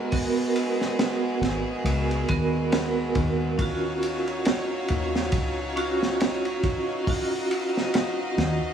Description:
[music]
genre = trip hop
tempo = 69 BPM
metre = 4/4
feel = swing 57% on 16ths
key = G# dorian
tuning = A4 = 440 Hz
[part]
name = vibraphone with hard mallets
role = accompaniment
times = 0.0-8.7 s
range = B3 to A#4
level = -26 LUFS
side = right 3 dB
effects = tremolo, tape echo
[part]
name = bright chamber violin section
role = sustained chords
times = 0.0-8.7 s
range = G#3 to E#5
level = -31 LUFS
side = left 1 dB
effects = none
[part]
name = deep dub fingered electric bass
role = bass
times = 0.0-8.6 s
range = G#1 to D#2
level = -28 LUFS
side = left 1 dB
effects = none
[part]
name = crunchy breakbeat drum kit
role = drums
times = 0.1-8.6 s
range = hi-hat, kick drum, ride cymbal, snare drum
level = -28 LUFS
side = equal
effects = none
[sound]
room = light reverb, studio reverb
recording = vinyl crackle, studio ambience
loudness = -23 LUFS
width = side -8 dB against mid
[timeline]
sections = 0.0-8.7 A section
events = none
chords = 0.0 G#m9; 3.6 D#m9

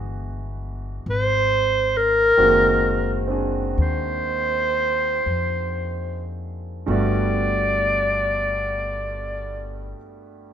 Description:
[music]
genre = jazz ballad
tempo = 36-48 BPM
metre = 4/4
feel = swing 67% on 8ths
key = unclear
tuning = A4 = 440 Hz
[part]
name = clear concert grand piano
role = accompaniment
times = 0.0-10.5 s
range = G2 to Ab4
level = -27 LUFS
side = right 3 dB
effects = none
[part]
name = upright bass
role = bass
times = 0.0-9.9 s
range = Gb1 to F2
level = -27 LUFS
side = left 1 dB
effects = none
[part]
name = breathy clarinet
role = melody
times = 1.1-9.9 s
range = Bb4 to D5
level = -20 LUFS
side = equal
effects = none
[sound]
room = moderate large studio reverb, RT60 1.4 s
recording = minimal, uncompressed stereo recording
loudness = -19 LUFS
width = side -9 dB against mid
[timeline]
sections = 0.0-1.0 A section; 1.0-6.9 B section; 6.9-10.5 C section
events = slowing down 0.0-6.9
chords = 0.0 E7; 1.0 Ab7; 6.9 Gmaj9

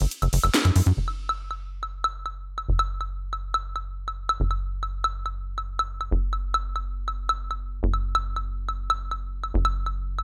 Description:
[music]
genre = psychedelic trance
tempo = 140 BPM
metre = 4/4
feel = straight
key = unclear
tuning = A4 = 440 Hz
[part]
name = tight sequencer bass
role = bass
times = 0.0-10.2 s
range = F#1 to F#2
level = -30 LUFS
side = equal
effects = none
[part]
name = drum and bass drum kit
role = drums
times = 0.0-10.2 s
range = hi-hat, ride cymbal, snare drum, woodblock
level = -28 LUFS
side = equal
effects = overdrive
[sound]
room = light reverb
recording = none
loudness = -27 LUFS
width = mono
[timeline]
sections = 1.0-10.2 A section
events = band accent 0.5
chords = none

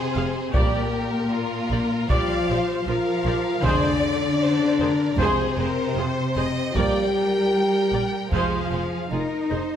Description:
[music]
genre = cinematic, epic orchestral film score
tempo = 77 BPM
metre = 4/4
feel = straight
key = F dorian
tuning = A4 = 440 Hz
[part]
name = rich studio violin section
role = melody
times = 0.0-9.1 s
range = Bb4 to G5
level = -30 LUFS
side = left 4 dB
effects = none
[part]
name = warm symphonic violin section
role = second line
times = 0.0-9.8 s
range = F4 to Eb5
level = -31 LUFS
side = left 1 dB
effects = none
[part]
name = mellow French horn section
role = sustained chords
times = 0.0-9.8 s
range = Bb3 to G4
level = -25 LUFS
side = left 3 dB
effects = none
[part]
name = dark symphonic cello section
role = bass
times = 0.0-9.8 s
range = Bb2 to Eb4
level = -28 LUFS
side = right 2 dB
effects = none
[part]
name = rich symphonic viola section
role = accompaniment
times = 0.2-9.6 s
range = F4 to F5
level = -31 LUFS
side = right 1 dB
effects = none
[part]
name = rich chamber double bass section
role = bass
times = 0.2-9.6 s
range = F1 to Bb1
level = -30 LUFS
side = right 3 dB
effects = none
[part]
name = warm trombone section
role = sustained chords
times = 0.5-8.6 s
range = F3 to Bb3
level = -33 LUFS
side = right 4 dB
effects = none
[part]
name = mellow trumpet section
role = stabs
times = 0.5-8.6 s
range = C5 to D5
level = -31 LUFS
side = right 1 dB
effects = none
[part]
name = taiko ensemble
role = drums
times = 0.5-9.1 s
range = none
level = -27 LUFS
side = equal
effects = none
[part]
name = timpani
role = percussion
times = 3.7-9.5 s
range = F2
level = -34 LUFS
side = right 2 dB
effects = none
[sound]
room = moderate scoring stage reverb, RT60 2.0 s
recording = none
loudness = -20 LUFS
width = side -9 dB against mid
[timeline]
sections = 0.0-9.8 A section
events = none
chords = 0.0 Fm; 0.5 Bb6; 3.6 Fm; 6.7 Bb6; 8.3 Fm

